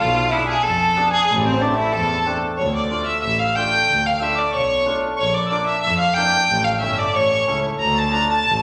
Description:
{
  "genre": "klezmer",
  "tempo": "92 BPM",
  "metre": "2/4",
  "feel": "straight",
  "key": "D harmonic minor",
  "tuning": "A4 = 440 Hz",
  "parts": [
    { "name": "clear violin", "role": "melody", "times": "0.0-8.6 s", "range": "C4 to Bb5", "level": "-21 LUFS", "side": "equal", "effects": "none" },
    { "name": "accordion", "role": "second line", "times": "0.0-8.6 s", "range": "C5 to A6", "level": "-28 LUFS", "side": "equal", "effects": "light tremolo tuning" },
    { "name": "bright double bass", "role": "bass", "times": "0.0-8.6 s", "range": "G1 to F2", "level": "-28 LUFS", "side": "equal", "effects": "none" },
    { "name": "hammered dulcimer", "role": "accompaniment", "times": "0.3-8.3 s", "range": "A3 to G#4", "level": "-29 LUFS", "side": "equal", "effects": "none" }
  ],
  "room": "wet large studio reverb, RT60 1.3 s",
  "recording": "none",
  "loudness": "-19 LUFS",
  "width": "mono",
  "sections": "0.0-2.6 A section; 2.6-8.6 B section",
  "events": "none",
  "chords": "0.0 Bdim; 1.3 Am; 2.6 Dm; 5.2 Bb; 6.5 A; 7.8 Dm"
}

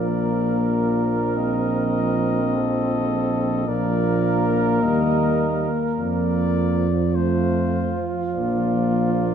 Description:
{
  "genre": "classical, brass quintet",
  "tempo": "102 BPM",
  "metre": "4/4",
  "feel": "rubato",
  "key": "Bb major",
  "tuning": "A4 = 440 Hz",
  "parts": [
    { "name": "clear cornet", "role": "melody", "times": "0.0-9.3 s", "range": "C5 to Eb5", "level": "-29 LUFS", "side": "left 7 dB", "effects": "none" },
    { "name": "mellow trumpet", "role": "second line", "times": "0.0-9.3 s", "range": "F4 to Bb4", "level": "-27 LUFS", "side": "right 6 dB", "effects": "none" },
    { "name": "warm French horn", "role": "accompaniment", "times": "0.0-9.3 s", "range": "A3 to C4", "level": "-25 LUFS", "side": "left 4 dB", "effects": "none" },
    { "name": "warm trombone", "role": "accompaniment", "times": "0.0-9.3 s", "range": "F3 to G3", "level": "-28 LUFS", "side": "right 5 dB", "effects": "none" },
    { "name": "mellow tuba", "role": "bass", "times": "0.0-9.3 s", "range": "Bb1 to F2", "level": "-23 LUFS", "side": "right 2 dB", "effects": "none" }
  ],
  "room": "moderate scoring stage reverb, RT60 1.7 s",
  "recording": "minimal, uncompressed stereo recording",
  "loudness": "-19 LUFS",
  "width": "side -8 dB against mid",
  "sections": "0.0-9.3 A section",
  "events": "none",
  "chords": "0.0 Bb; 1.4 F7/Bb; 3.7 Bb; 4.8 Eb; 6.0 Bb/F; 7.2 F; 8.4 Bb"
}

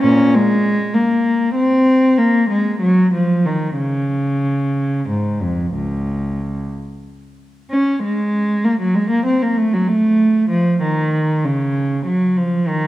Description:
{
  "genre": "classical, baroque-style suite movement for unaccompanied cello",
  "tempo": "63 BPM (dotted quarters)",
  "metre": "12/8",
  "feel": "uneven beats, rubato",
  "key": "Db major",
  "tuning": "A4 = 439 Hz",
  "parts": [
    { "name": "warm cello", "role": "solo", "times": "0.0-12.9 s", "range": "Db2 to Db4", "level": "-14 LUFS", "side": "equal", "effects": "none" }
  ],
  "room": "moderate concert hall reverb, RT60 2.1 s",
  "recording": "none",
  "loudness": "-15 LUFS",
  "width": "side -15 dB against mid",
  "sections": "0.0-7.7 A section; 7.7-12.9 A section",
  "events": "none",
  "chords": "none"
}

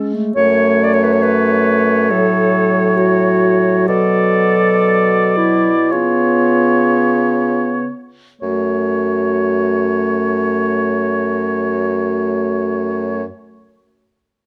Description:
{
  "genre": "classical, slow romantic movement for wind quintet",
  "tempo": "43-69 BPM",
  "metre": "4/4",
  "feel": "rubato",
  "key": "F# minor",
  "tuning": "A4 = 441 Hz",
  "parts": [
    { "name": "clear clarinet", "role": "accompaniment", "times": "0.0-13.2 s", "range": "A3 to D5", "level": "-20 LUFS", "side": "equal", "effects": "none" },
    { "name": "mellow French horn", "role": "accompaniment", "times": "0.0-13.2 s", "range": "F#3 to B3", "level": "-21 LUFS", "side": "equal", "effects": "none" },
    { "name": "warm oboe", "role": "second line", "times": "0.3-13.2 s", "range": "C#5 to D5", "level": "-22 LUFS", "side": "equal", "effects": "none" },
    { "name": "clear bassoon", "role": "bass", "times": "0.4-13.3 s", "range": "F#2 to C#3", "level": "-22 LUFS", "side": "equal", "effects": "none" }
  ],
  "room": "light reverb",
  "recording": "close, detailed microphones",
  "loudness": "-15 LUFS",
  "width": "mono",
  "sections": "0.4-8.4 A section; 8.4-13.1 B section",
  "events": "slowing down 0.0-8.4",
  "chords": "0.4 F#m; 2.1 F#m/A; 3.9 Bm7; 5.9 C#7; 8.4 F#m"
}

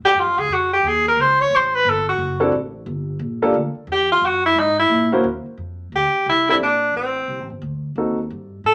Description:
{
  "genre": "jazz, small-group swing and bop",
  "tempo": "176 BPM",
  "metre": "4/4",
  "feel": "swing 63% on 8ths",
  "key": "unclear",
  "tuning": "A4 = 440 Hz",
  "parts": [
    { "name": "clear tenor saxophone", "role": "melody", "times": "0.0-8.7 s", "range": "C4 to Db5", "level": "-18 LUFS", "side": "equal", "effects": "none" },
    { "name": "upright bass", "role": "bass", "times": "0.0-8.7 s", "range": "F#1 to Bb2", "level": "-30 LUFS", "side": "equal", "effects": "none" },
    { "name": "warm upright piano", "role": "accompaniment", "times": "2.4-8.2 s", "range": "Bb3 to C5", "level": "-22 LUFS", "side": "equal", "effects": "none" }
  ],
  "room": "wet club reverb, RT60 0.7 s",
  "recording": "none",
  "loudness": "-19 LUFS",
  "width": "mono",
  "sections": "0.0-5.6 A section; 5.6-8.7 B section",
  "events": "tenor saxophone solo 0.0-5.6",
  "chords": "0.1 N.C.; 1.5 Gadd9; 2.2 D7; 2.9 Gm; 4.2 Gb7; 5.6 F5; 6.9 Gsus24; 7.6 D7b9"
}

